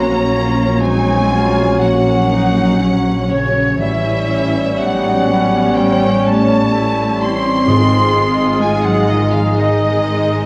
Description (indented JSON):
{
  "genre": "classical, slow romantic movement for symphony orchestra",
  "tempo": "54-64 BPM",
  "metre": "4/4",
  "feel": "rubato",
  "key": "unclear",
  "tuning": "A4 = 440 Hz",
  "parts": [
    { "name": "clear chamber violin section", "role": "melody", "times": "0.0-10.5 s", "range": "Db5 to C6", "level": "-27 LUFS", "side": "equal", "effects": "none" },
    { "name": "dark cor anglais", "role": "second line", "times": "0.0-10.5 s", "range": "Db5 to Eb5", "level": "-27 LUFS", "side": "equal", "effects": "none" },
    { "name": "mellow silver concert flute", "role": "second line", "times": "0.0-10.5 s", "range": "Db5 to C6", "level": "-24 LUFS", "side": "equal", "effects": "none" },
    { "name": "rich chamber violin section", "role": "second line", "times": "0.0-10.5 s", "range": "Db5 to C6", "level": "-30 LUFS", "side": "equal", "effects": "none" },
    { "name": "dark bassoon", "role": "accompaniment", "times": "0.0-10.5 s", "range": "Gb3 to Ab3", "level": "-24 LUFS", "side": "equal", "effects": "none" },
    { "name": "rich chamber viola section", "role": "accompaniment", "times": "0.0-10.5 s", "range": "G3 to Gb4", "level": "-24 LUFS", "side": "equal", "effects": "none" },
    { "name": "mellow French horn section", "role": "sustained chords", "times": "0.0-10.5 s", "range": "Gb3 to Eb4", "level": "-22 LUFS", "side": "equal", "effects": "none" },
    { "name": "dark chamber cello section", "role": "bass", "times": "0.0-10.5 s", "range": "Db3 to C4", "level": "-22 LUFS", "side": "equal", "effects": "none" },
    { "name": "rich studio double bass section", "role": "bass", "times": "0.0-10.5 s", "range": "Ab1 to Bb1", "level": "-22 LUFS", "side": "equal", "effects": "none" },
    { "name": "timpani", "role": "percussion", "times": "7.7-9.0 s", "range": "Ab2", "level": "-21 LUFS", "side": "equal", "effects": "none" }
  ],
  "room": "wet recital hall reverb, RT60 1.5 s",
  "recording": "worn, warbling old tape, cassette tape, vinyl crackle, warbly pitch drift",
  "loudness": "-14 LUFS",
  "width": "mono",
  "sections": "0.0-10.5 A section",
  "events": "none",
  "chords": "0.0 Gb/Bb; 3.8 A7; 7.7 Ab"
}